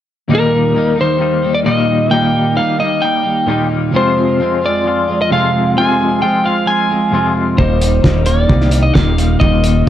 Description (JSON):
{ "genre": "indie rock", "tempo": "132 BPM", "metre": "4/4", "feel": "straight", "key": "Eb major", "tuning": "A4 = 440 Hz", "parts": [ { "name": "lightly driven lead guitar", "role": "melody", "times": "0.3-9.9 s", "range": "Bb4 to Ab5", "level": "-16 LUFS", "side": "left 1 dB", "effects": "slapback echo, plate reverb" }, { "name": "twangy electric guitar", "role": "riff", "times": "0.3-9.9 s", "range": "Eb2 to F4", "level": "-17 LUFS", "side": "left 5 dB", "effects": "tremolo" }, { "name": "twelve-string electric guitar", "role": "riff", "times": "0.3-9.9 s", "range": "Eb2 to F4", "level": "-18 LUFS", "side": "right 4 dB", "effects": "wide subtle chorus" }, { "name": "growling fingered electric bass", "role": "bass", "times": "7.6-9.8 s", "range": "Eb1 to C2", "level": "-14 LUFS", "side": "right 1 dB", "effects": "overdrive" }, { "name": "cloth-damped thuddy drum kit", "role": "drums", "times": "7.6-9.8 s", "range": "hi-hat, kick drum, snare drum", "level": "-15 LUFS", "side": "equal", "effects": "none" } ], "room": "light reverb", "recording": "dark, warm production", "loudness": "-11 LUFS", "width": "side -11 dB against mid", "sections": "0.3-9.9 A section", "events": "none", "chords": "0.3 Eb; 3.9 Fm; 7.6 Eb", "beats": "| 0.30 0.76 1.21 1.67 | 2.12 2.58 3.04 3.49 | 3.95 4.40 4.86 5.32 | 5.77 6.23 6.68 7.14 | 7.60 8.05 8.51 8.97 | 9.42 9.88" }